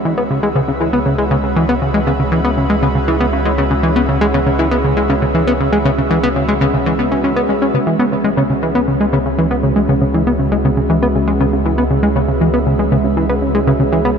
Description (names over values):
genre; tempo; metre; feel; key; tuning
ambient, sequencer-driven space music; 119 BPM; 4/4; straight; C# minor; A4 = 440 Hz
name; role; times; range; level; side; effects
lush unison pad; sustained chords; 0.0-14.2 s; G#3 to E5; -18 LUFS; right 1 dB; chorus, shimmer reverb
warm sub bass; bass; 0.0-14.2 s; C#2; -22 LUFS; equal; none
plucky analog bass; riff; 0.1-14.1 s; C#3 to C#4; -14 LUFS; equal; ping-pong delay
room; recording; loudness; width
wet huge ambient reverb, RT60 8.6 s; in a vast, echoing space; -12 LUFS; side -6 dB against mid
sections
0.0-14.2 A section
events
fade-in on analog synth pad 0.0-14.2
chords
0.0 C#m